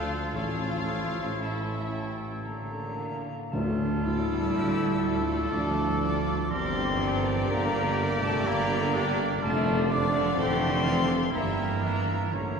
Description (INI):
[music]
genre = classical, slow romantic movement for symphony orchestra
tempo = 55-64 BPM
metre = 3/4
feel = rubato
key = D minor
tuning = A4 = 436 Hz
[part]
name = rich symphonic violin section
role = melody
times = 0.0-12.3 s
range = D5 to F5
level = -41 LUFS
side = left 5 dB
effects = none
[part]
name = bright clarinet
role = second line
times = 0.0-2.5 s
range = E4 to F4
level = -44 LUFS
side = left 2 dB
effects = none
[part]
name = clear symphonic violin section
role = second line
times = 0.0-12.3 s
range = E4 to E5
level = -41 LUFS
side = left 2 dB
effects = none
[part]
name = warm oboe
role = second line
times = 0.0-12.6 s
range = C#4 to C#5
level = -37 LUFS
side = right 1 dB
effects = none
[part]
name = warm symphonic viola section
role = accompaniment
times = 0.0-12.3 s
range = E4 to A4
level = -39 LUFS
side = right 1 dB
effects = none
[part]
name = mellow French horn section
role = sustained chords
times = 0.0-12.6 s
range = E3 to E4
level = -31 LUFS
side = left 2 dB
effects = none
[part]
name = warm trombone section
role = sustained chords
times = 0.0-12.6 s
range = A2 to D4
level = -39 LUFS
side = right 2 dB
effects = none
[part]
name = clear trumpet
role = stabs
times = 0.0-12.6 s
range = A4 to D5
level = -36 LUFS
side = right 1 dB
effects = none
[part]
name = clear symphonic double bass section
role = bass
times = 0.0-12.6 s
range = F1 to D2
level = -34 LUFS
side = right 2 dB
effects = none
[part]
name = mellow tuba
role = bass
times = 0.0-12.6 s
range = F1 to D2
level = -35 LUFS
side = right 2 dB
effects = none
[part]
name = warm symphonic cello section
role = bass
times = 0.0-12.6 s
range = A2 to G3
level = -34 LUFS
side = right 3 dB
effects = none
[part]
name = timpani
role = percussion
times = 0.3-5.0 s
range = A2 to D3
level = -35 LUFS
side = equal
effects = none
[part]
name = silver concert flute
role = second line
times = 1.4-12.6 s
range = G5 to E6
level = -35 LUFS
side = left 2 dB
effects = none
[part]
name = tam-tam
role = percussion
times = 3.5-7.5 s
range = none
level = -43 LUFS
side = left 2 dB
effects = none
[sound]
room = wet church reverb, RT60 3.5 s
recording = recorded in a church or concert hall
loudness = -25 LUFS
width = side -6 dB against mid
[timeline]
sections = 0.0-3.5 A section; 3.5-12.6 B section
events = band accent 3.5-4.6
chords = 0.3 A; 3.5 Dm; 6.5 Gm; 9.4 Dm/F; 11.3 Edim/G